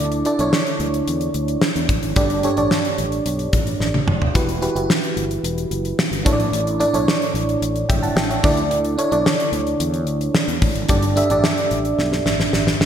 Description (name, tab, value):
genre	1980s-style pop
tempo	110 BPM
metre	4/4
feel	straight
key	unclear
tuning	A4 = 440 Hz
part	FM electric piano	accompaniment	0.0-12.9 s	G2 to A5	-20 LUFS	right 2 dB	chorus
part	fretless electric bass	bass	0.0-12.9 s	E1 to E2	-25 LUFS	left 1 dB	none
part	gated 80s drum kit	drums	0.1-12.9 s	hi-hat, kick drum, snare drum, toms	-20 LUFS	equal	none
room	wet lush hall reverb, RT60 2.0 s, small room ambience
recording	bright 1980s-style digital production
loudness	-17 LUFS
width	side -9 dB against mid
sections	0.0-12.9 A section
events	drum fill 3.8-4.3, 12.0-12.9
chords	0.0 Dsus2; 2.2 Gsus2; 4.3 Emadd9; 6.3 Asus4; 8.4 Dsus2; 10.9 Gsus2